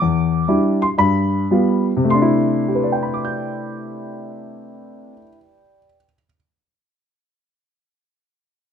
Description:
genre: solo jazz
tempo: 102-132 BPM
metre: 4/4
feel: swing 66% on 8ths, rubato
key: C major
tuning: A4 = 437 Hz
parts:
  - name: warm baby grand piano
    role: solo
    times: 0.0-6.4 s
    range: E2 to G6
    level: -17 LUFS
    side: left 1 dB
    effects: none
room: little or no reverb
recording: close, detailed microphones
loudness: -15 LUFS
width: side -8 dB against mid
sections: 0.0-2.1 A section; 2.1-6.7 B section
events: slowing down 0.0-2.1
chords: 0.0 Em7; 1.0 G7; 2.1 C69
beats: | 0.01 0.48 0.97 1.50 | 2.08 2.66 3.25 3.83 | 4.41 4.98 5.57 6.16

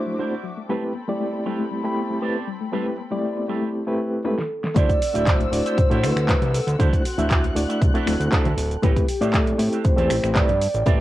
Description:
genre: nu-disco, nu disco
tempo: 118 BPM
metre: 4/4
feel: straight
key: unclear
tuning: A4 = 441 Hz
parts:
  - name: reed electric piano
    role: accompaniment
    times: 0.0-11.0 s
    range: A3 to B5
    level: -25 LUFS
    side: equal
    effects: fast tremolo, cassette tape
  - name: muted studio string section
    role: sustained chords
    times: 0.0-11.0 s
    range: C4 to F#6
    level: -36 LUFS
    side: left 4 dB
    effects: sidechain pumping, cassette tape
  - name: soft round pluck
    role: arpeggios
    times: 0.1-3.6 s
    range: F#3 to C4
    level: -32 LUFS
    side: left 6 dB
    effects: wide subtle chorus, sidechain pumping, cassette tape, tape echo
  - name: electric guitar with an envelope filter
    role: riff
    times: 0.1-11.0 s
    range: C4 to A5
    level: -34 LUFS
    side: right 10 dB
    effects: wide subtle chorus, cassette tape
  - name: pop drum kit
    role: drums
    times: 4.2-11.0 s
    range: finger snaps, handclaps, hi-hat, shaker, snare drum, toms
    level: -28 LUFS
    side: equal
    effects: low-pass filter on toms, cassette tape, low-pass filter on snare, low-pass filter on hats, low-pass filter on perc
  - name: vibraphone with soft mallets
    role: melody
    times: 4.3-11.0 s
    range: F#4 to E5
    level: -26 LUFS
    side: equal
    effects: cassette tape, tape echo
  - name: fat analog bass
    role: bass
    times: 4.8-11.0 s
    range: D1 to A2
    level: -24 LUFS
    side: equal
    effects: none
  - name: electronic kick drum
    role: drums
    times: 4.8-11.0 s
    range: none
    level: -20 LUFS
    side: equal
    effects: cassette tape
  - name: congas and cabasa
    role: percussion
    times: 4.8-11.0 s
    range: none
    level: -33 LUFS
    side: left 10 dB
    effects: none
room: light reverb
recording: home recording on cassette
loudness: -19 LUFS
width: side -15 dB against mid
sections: 0.0-4.8 A section; 4.8-11.0 B section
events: filter sweep on synth arpeggio sound 0.0-4.8; drum fill 4.3-4.8; drop 4.8-11.0; clean electric guitar fill 8.1-8.8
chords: 0.0 D9; 0.7 Am9; 4.8 D9; 8.8 Am9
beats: 0.18 | 0.69 1.20 1.71 2.22 | 2.73 3.23 3.74 4.25 | 4.76 5.27 5.78 6.29 | 6.79 7.30 7.81 8.32 | 8.83 9.34 9.85 10.35 | 10.86

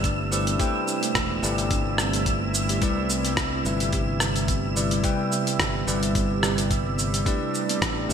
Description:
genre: sunset chillout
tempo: 108 BPM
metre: 4/4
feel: swing 55% on 16ths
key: C major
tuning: A4 = 444 Hz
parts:
  - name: bell-like tine electric piano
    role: accompaniment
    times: 0.0-8.1 s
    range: C3 to G5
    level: -28 LUFS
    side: moving between left 4 dB and right 5 dB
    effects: auto-pan, ping-pong delay
  - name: lush unison pad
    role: sustained chords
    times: 0.0-8.1 s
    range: C3 to E4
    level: -31 LUFS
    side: right 1 dB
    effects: chorus
  - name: kalimba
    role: arpeggios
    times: 0.0-8.1 s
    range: A3 to G4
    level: -34 LUFS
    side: right 2 dB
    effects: ping-pong delay
  - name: modern bright fingered electric bass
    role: bass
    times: 0.0-8.1 s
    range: E1 to C2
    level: -28 LUFS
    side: equal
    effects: none
  - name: dusty soul sampler-style drum kit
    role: drums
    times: 0.0-8.1 s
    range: hi-hat, rim click, shaker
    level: -27 LUFS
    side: equal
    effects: gated reverb
  - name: electronic kick drum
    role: drums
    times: 0.0-7.9 s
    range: none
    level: -28 LUFS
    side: equal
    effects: none
  - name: wind-like tuned noise texture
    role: texture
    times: 0.0-8.1 s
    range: E6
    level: -32 LUFS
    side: right 4 dB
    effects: built-in reverb, analog chorus
room: moderate lush hall reverb, RT60 1.8 s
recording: bright 1980s-style digital production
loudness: -22 LUFS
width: side -8 dB against mid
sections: 0.0-8.1 A section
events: none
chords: 0.0 Am11; 2.8 Cmaj7; 7.3 Am11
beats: 0.04 | 0.60 1.15 1.71 2.26 | 2.82 3.37 3.93 4.49 | 5.04 5.60 6.15 6.71 | 7.26 7.82

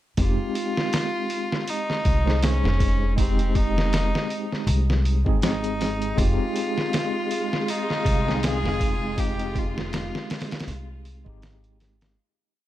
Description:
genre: trip hop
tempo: 80 BPM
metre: 4/4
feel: swing 56% on 16ths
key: F minor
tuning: A4 = 441 Hz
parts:
  - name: bright cello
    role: melody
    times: 0.2-10.7 s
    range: C4 to Ab4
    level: -29 LUFS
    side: equal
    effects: tape echo
  - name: bright tine electric piano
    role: accompaniment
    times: 0.2-12.2 s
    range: Ab3 to C5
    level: -29 LUFS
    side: equal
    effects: medium stereo tremolo, vintage 12-bit sampler grit
  - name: upright bass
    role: bass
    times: 0.2-12.1 s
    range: F1 to C2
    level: -25 LUFS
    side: equal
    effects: none
  - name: trip hop sampler-style drum kit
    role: drums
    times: 0.2-12.2 s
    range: hi-hat, kick drum, snare drum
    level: -26 LUFS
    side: equal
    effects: none
  - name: clear symphonic string section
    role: sustained chords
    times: 6.2-12.2 s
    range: Ab3 to F4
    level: -34 LUFS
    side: left 1 dB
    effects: none
room: small room ambience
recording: none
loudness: -21 LUFS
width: side -14 dB against mid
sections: 0.2-12.2 groove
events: fade-out 8.2-12.2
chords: 0.2 Fm7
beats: | 0.18 0.93 1.68 2.43 | 3.18 3.93 4.68 5.43 | 6.18 6.93 7.68 8.43 | 9.18 9.93 10.68 11.43

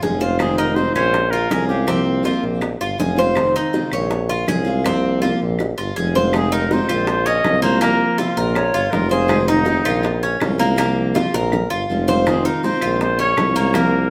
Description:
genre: latin, Cuban son and guajira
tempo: 162 BPM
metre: 4/4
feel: straight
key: unclear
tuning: A4 = 440 Hz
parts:
  - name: picked steel-string acoustic guitar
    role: accompaniment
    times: 0.0-14.1 s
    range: C3 to F4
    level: -25 LUFS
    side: equal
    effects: none
  - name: Cuban tres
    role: arpeggios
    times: 0.0-14.1 s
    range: Bb3 to Db5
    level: -24 LUFS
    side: equal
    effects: none
  - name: clear tuba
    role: bass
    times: 0.0-14.1 s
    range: F1 to C2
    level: -23 LUFS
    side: equal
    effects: none
  - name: bongos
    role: percussion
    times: 0.0-13.9 s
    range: none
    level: -28 LUFS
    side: equal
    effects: none
  - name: breathy trumpet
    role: melody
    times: 0.2-2.0, 6.4-9.1, 12.3-14.1 s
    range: F4 to Eb5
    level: -23 LUFS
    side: equal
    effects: none
  - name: claves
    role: percussion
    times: 0.4-13.9 s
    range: none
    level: -34 LUFS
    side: equal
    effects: none
  - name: bright silver concert flute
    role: second line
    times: 8.5-10.2 s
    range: Eb4 to Db5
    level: -24 LUFS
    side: equal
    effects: none
room: moderate studio reverb, RT60 0.9 s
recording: band playing live in one room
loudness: -18 LUFS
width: mono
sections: 0.0-6.3 A section; 6.3-14.1 B section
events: drum fill 5.6-6.3, 11.2-12.3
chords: 0.4 Fm7; 1.1 Bbm9; 1.9 C7sus4; 2.6 Bbm9; 3.4 Fm7; 4.1 Bbm9; 4.8 C7sus4; 5.6 Bbm9; 6.3 Fm7; 7.1 Bbm11; 7.8 C7sus4; 8.6 Bbm9; 9.3 Fm7; 10.0 Bbm9; 10.8 C7sus4; 11.5 Bbm9; 12.3 Fm7; 13.0 Bbm9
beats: 0.02 | 0.40 0.77 1.14 1.51 | 1.88 2.25 2.62 2.99 | 3.36 3.73 4.11 4.48 | 4.85 5.22 5.59 5.96 | 6.33 6.70 7.07 7.44 | 7.81 8.19 8.56 8.93 | 9.30 9.67 10.04 10.41 | 10.78 11.15 11.52 11.89 | 12.26 12.63 13.00 13.38 | 13.75

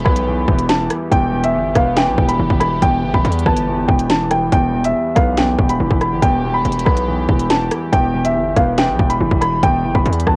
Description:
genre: hip hop, drill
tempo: 141 BPM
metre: 4/4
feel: half-time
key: E minor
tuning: A4 = 440 Hz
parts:
  - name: dark upright piano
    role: melody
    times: 0.0-10.4 s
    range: E5 to B5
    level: -21 LUFS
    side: equal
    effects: low-pass filter, cassette tape
  - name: dark baby grand piano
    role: accompaniment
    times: 0.0-10.4 s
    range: E2 to B3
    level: -23 LUFS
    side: equal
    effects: low-pass filter, cassette tape
  - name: sweeping resonant pad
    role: sustained chords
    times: 0.0-10.4 s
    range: E3 to G4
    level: -32 LUFS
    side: equal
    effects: chorus, cassette tape
  - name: distorted 808-style bass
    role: bass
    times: 0.0-10.4 s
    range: E1 to E2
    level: -23 LUFS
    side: equal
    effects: distortion
  - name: drill drum kit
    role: drums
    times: 0.1-10.4 s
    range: hi-hat, kick drum, rim click, snare drum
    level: -20 LUFS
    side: equal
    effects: cassette tape
room: digital ambience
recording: home recording on cassette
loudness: -16 LUFS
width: mono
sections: 0.0-10.4 A section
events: none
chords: 0.0 Em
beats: 0.27 0.69 | 1.12 1.54 1.97 2.40 | 2.82 3.25 3.67 4.10 | 4.52 4.95 5.37 5.80 | 6.22 6.65 7.08 7.50 | 7.93 8.35 8.78 9.20 | 9.63 10.05

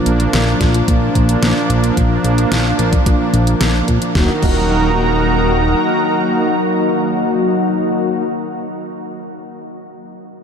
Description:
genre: synthwave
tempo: 110 BPM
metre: 4/4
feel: straight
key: Eb harmonic minor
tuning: A4 = 440 Hz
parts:
  - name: brassy analog pad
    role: sustained chords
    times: 0.0-8.0 s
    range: Eb3 to Bb5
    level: -18 LUFS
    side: right 2 dB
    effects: chorus, sidechain pumping
  - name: mellow synth brass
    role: stabs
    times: 0.0-8.2 s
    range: Bb2 to Gb4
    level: -19 LUFS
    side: left 2 dB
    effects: chorus, ping-pong delay
  - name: fat analog bass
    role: bass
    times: 0.1-5.8 s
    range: Eb1 to Bb2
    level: -16 LUFS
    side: equal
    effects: none
  - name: pop drum kit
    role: drums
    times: 0.1-4.6 s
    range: crash cymbal, hi-hat, snare drum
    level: -23 LUFS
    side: left 1 dB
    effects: overdrive
  - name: electronic kick drum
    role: drums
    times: 0.6-4.6 s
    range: none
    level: -16 LUFS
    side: equal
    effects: overdrive
room: wet huge ambient reverb, RT60 8.0 s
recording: dreamy mix soaked in reverb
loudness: -13 LUFS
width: side -7 dB against mid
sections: 0.0-4.2 A section; 4.2-8.5 B section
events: filter sweep on analog polysynth 0.0-4.2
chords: 0.0 Bb; 4.2 Ebm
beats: 0.34 0.88 1.43 | 1.97 2.52 3.06 3.61 | 4.15 4.70 5.24 5.79 | 6.33 6.88 7.43 7.97

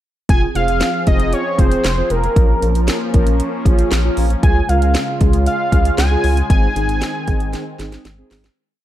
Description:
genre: synth-pop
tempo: 116 BPM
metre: 4/4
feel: straight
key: unclear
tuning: A4 = 439 Hz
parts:
  - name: fat analog lead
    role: melody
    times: 0.3-8.0 s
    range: Bb4 to Ab5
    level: -21 LUFS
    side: equal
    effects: chorus, ping-pong delay
  - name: mellow synth brass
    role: accompaniment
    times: 0.3-8.4 s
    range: C4 to Bb4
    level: -23 LUFS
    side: right 1 dB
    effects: chorus
  - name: sweeping resonant pad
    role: sustained chords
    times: 0.3-8.5 s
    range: Db3 to Ab4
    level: -25 LUFS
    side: equal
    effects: chorus
  - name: rubbery square bass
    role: bass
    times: 0.3-8.5 s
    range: F1 to Db2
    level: -18 LUFS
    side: equal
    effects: none
  - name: house drum kit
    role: drums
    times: 0.3-8.6 s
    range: hi-hat, kick drum, snare drum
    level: -16 LUFS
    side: equal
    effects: none
room: digital ambience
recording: dark, warm production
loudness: -13 LUFS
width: side -13 dB against mid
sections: 0.3-8.6 pre-chorus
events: fade-out 6.5-8.6; drum fill 7.5-8.6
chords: 0.3 Fm; 2.4 Bbm; 4.4 Db; 6.5 Ab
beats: | 0.29 0.81 1.33 1.84 | 2.36 2.88 3.40 3.91 | 4.43 4.95 5.46 5.98 | 6.50 7.02 7.53 8.05

